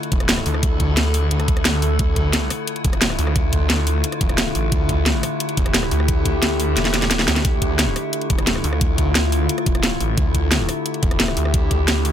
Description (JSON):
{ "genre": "dark technical drum and bass", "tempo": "176 BPM", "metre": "4/4", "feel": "straight", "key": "D minor", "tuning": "A4 = 440 Hz", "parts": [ { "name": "metallic inharmonic drone", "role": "sustained chords", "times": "0.0-12.1 s", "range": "D3 to A4", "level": "-24 LUFS", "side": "left 2 dB", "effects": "chorus, built-in reverb, sidechain pumping" }, { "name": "drum and bass drum kit", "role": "drums", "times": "0.0-12.1 s", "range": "hi-hat, rim click, snare drum", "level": "-20 LUFS", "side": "equal", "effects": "overdrive" }, { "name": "snarling distorted saw bass", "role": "bass", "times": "0.1-12.1 s", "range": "E1 to D2", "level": "-21 LUFS", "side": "equal", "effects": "distortion, overdrive, sidechain pumping" }, { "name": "electronic kick drum", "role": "drums", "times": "0.1-11.8 s", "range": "none", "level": "-20 LUFS", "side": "equal", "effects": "overdrive" } ], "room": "little or no reverb", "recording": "none", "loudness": "-17 LUFS", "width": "side -10 dB against mid", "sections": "0.0-12.1 A section", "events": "kick drops out 6.8-7.4; drum fill 6.8-7.4", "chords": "0.0 Dm" }